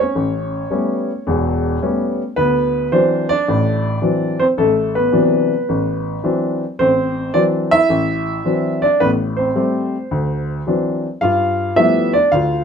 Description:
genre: solo jazz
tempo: 108 BPM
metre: 4/4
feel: swing 67% on 8ths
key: D mixolydian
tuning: A4 = 437 Hz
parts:
  - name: warm baby grand piano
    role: solo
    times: 0.0-12.6 s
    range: E1 to F5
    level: -15 LUFS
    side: equal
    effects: none
room: light reverb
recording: minimal, uncompressed stereo recording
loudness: -15 LUFS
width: side -7 dB against mid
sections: 0.0-2.4 A section; 2.4-12.6 A section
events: none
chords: 0.2 A9; 2.4 D9; 9.0 Am7; 10.1 D9; 11.2 G9

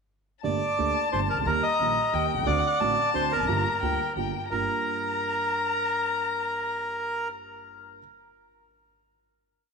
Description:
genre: tango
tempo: 178 BPM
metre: 3/4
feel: rubato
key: G minor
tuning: A4 = 440 Hz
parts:
  - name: bandoneon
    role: melody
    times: 0.4-7.3 s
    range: Bb4 to Eb5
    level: -27 LUFS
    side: right 2 dB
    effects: none
  - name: warm violin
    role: second line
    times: 0.4-7.3 s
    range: F#5 to Bb5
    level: -30 LUFS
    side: left 11 dB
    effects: none
  - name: dark concert grand piano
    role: accompaniment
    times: 0.4-8.0 s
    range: G1 to G4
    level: -32 LUFS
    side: right 11 dB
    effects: none
  - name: upright bass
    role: bass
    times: 0.4-4.6 s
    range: E1 to Eb2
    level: -33 LUFS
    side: left 1 dB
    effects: none
room: moderate plate reverb, RT60 2.9 s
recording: 1960s-style stereo with parts hard left and right, faint mains hum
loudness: -24 LUFS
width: side -5 dB against mid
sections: 0.4-4.5 A section; 4.5-6.5 final chord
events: none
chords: 0.4 Gmadd9; 1.5 Eb; 2.5 D7; 3.5 Gm7

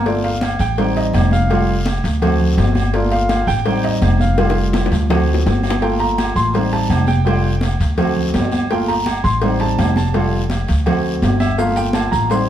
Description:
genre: latin, salsa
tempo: 166 BPM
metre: 4/4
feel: straight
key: G minor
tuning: A4 = 441 Hz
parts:
  - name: clear grand piano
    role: accompaniment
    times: 0.0-12.5 s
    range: G3 to C6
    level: -19 LUFS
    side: right 1 dB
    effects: none
  - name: upright bass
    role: bass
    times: 0.0-12.5 s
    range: F1 to D2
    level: -18 LUFS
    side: equal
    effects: none
  - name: congas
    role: percussion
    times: 0.1-12.5 s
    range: none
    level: -23 LUFS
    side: right 1 dB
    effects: none
  - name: cowbell and bongos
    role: percussion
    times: 0.1-12.5 s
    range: none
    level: -26 LUFS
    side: left 4 dB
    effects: none
  - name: guiro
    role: percussion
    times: 0.1-12.5 s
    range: none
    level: -34 LUFS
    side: left 4 dB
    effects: none
  - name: agogo bells and timbales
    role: percussion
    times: 0.4-12.5 s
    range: none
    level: -26 LUFS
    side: right 2 dB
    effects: none
  - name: maracas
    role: percussion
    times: 11.6-12.5 s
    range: none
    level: -40 LUFS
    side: right 3 dB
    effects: none
room: wet studio reverb, RT60 0.9 s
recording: heard from further back in the room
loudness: -14 LUFS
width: side -11 dB against mid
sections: 0.1-12.5 A section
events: grand piano solo 0.1-12.5; drum fill 4.4-5.8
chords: 0.1 Gm7; 0.8 Am7b5; 1.5 Fadd9; 2.2 D7; 2.9 Gm7; 3.7 Am7b5; 4.4 Fadd9; 5.1 D7; 5.8 Gm7; 6.5 Am7b5; 7.3 Fadd9; 8.0 D7; 8.7 Gm7; 9.4 Am7b5; 10.1 Fadd9; 10.9 D7; 11.6 Gm7

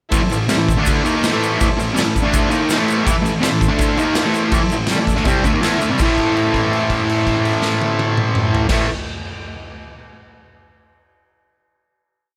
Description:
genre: garage rock duo or trio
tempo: 164 BPM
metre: 4/4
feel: straight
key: A minor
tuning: A4 = 440 Hz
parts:
  - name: combo organ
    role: sustained chords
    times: 0.1-8.9 s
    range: E4 to B5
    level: -28 LUFS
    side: equal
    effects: none
  - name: fuzz guitar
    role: riff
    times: 0.1-8.9 s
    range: A2 to E4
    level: -19 LUFS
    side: equal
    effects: distortion
  - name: raw garage drum kit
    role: drums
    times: 0.1-8.8 s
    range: crash cymbal, kick drum, snare drum, toms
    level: -23 LUFS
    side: equal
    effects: none
  - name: tube shaker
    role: percussion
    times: 0.1-6.2 s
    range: none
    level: -35 LUFS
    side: equal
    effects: none
room: moderate small room reverb, RT60 0.5 s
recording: none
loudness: -17 LUFS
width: mono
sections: 0.1-6.0 riff; 6.0-8.9 final chord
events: transistor combo organ fill 5.3-6.0; held note 6.0-8.7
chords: 0.1 Am

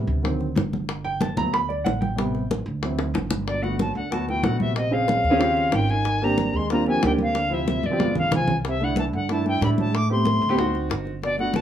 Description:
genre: Afro-Cuban jazz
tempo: 186 BPM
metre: 4/4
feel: straight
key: G major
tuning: A4 = 437 Hz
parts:
  - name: warm baby grand piano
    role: accompaniment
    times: 0.0-11.6 s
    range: C3 to B5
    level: -25 LUFS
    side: right 1 dB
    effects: none
  - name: upright bass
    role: bass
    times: 0.0-11.6 s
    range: G1 to A2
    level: -28 LUFS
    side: right 1 dB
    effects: none
  - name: congas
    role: percussion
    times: 0.1-11.6 s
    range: none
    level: -28 LUFS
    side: equal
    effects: none
  - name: bongos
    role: percussion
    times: 0.2-11.6 s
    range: none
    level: -30 LUFS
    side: left 5 dB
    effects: none
  - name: bright reedy silver concert flute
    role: melody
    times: 3.5-11.6 s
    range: D5 to D6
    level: -25 LUFS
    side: left 2 dB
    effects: plate reverb
  - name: mellow trombone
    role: second line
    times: 3.5-11.6 s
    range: B2 to A3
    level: -30 LUFS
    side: right 3 dB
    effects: none
room: moderate club reverb, RT60 0.5 s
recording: none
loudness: -20 LUFS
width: side -10 dB against mid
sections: 0.0-3.5 A section; 3.5-11.6 B section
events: grand piano solo 0.0-3.5; drum fill 3.0-3.5, 7.8-8.6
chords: 0.2 D7b9; 0.9 Gmaj9; 2.2 Am7; 2.8 D9; 3.5 Gmaj9; 4.8 Bbm9; 5.4 Eb13; 6.1 Abmaj9#11; 7.4 Dm9; 8.0 G7b9; 8.6 C6; 9.9 Am7; 10.6 D7b9

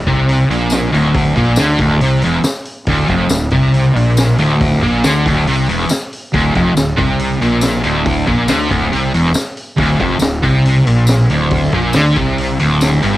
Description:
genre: garage rock duo or trio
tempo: 139 BPM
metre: 4/4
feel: straight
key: D minor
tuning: A4 = 445 Hz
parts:
  - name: overdriven electric guitar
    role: riff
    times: 0.0-13.2 s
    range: D2 to D3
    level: -13 LUFS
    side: equal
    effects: harmonic tremolo, cassette tape
  - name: fuzz fingered electric bass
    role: bass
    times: 0.0-13.2 s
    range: D1 to D2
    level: -19 LUFS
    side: equal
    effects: overdrive
  - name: vintage drum kit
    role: drums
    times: 0.1-13.1 s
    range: hi-hat, kick drum, snare drum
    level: -20 LUFS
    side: equal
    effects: cassette tape
  - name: tambourine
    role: percussion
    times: 0.7-12.9 s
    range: none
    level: -23 LUFS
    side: left 4 dB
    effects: none
room: light reverb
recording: home recording on cassette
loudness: -11 LUFS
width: side -15 dB against mid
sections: 0.0-13.2 A section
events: none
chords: none

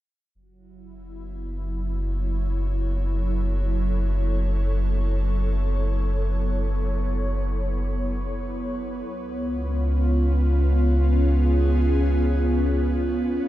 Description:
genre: ambient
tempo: free time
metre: none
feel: none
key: F# minor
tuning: A4 = 440 Hz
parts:
  - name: airy breathy pad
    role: sustained chords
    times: 0.3-13.5 s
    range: F#3 to C#5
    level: -27 LUFS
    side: right 1 dB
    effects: chorus, shimmer reverb
  - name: warm sub bass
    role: bass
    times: 0.3-13.5 s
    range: F#1 to C#2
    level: -23 LUFS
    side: equal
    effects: none
room: light reverb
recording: none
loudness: -21 LUFS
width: side -14 dB against mid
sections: 0.4-13.5 A section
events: fade-in on analog synth pad 0.4-13.5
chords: 0.4 F#m7; 9.1 C#7

